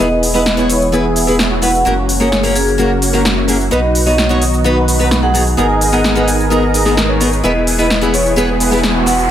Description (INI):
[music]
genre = EDM, festival progressive house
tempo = 129 BPM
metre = 4/4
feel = straight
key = unclear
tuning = A4 = 440 Hz
[part]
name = vibraphone with medium mallets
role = melody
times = 0.0-9.3 s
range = G#4 to G#5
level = -19 LUFS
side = equal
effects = digital delay
[part]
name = picked steel-string acoustic guitar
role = accompaniment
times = 0.0-9.1 s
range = A#3 to C#5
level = -18 LUFS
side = left 1 dB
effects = digital delay
[part]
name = lush unison pad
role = sustained chords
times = 0.0-9.3 s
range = C#3 to A#4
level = -21 LUFS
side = right 1 dB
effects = chorus
[part]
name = supersaw chords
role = riff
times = 0.0-9.2 s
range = A#3 to G#5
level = -17 LUFS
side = equal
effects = low-pass filter, digital delay
[part]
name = saturated sub bass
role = bass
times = 0.0-9.3 s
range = E1 to B1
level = -18 LUFS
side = equal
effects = none
[part]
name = big-room dance drum kit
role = drums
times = 0.0-9.3 s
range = hi-hat, shaker, snare drum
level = -17 LUFS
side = equal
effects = none
[part]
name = riser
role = sound effects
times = 8.2-9.3 s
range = none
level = -24 LUFS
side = equal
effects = none
[sound]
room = light reverb, digital ambience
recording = none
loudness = -11 LUFS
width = side -10 dB against mid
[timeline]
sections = 0.0-9.3 A section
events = riser 8.2-9.3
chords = 0.0 E; 1.9 F#; 3.7 B; 5.6 G#madd9; 7.4 E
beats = | 0.00 0.46 0.93 1.39 | 1.86 2.33 2.79 3.25 | 3.72 4.18 4.65 5.12 | 5.58 6.05 6.51 6.98 | 7.44 7.91 8.37 8.84 | 9.30